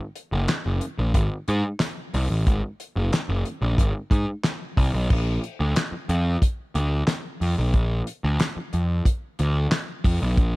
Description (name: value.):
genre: funk.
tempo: 91 BPM.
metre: 4/4.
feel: straight.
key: Bb mixolydian.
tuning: A4 = 435 Hz.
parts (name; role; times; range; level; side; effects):
damped 70s drum kit; drums; 0.2-10.5 s; crash cymbal, handclaps, hi-hat, kick drum, snare drum; -24 LUFS; equal; none.
fuzz picked electric bass; bass; 0.3-10.6 s; Gb1 to Ab2; -22 LUFS; equal; overdrive.
room: little or no reverb.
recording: dark, warm production.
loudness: -22 LUFS.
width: side -21 dB against mid.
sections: 0.0-5.1 A section; 5.1-10.6 B section.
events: none.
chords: none.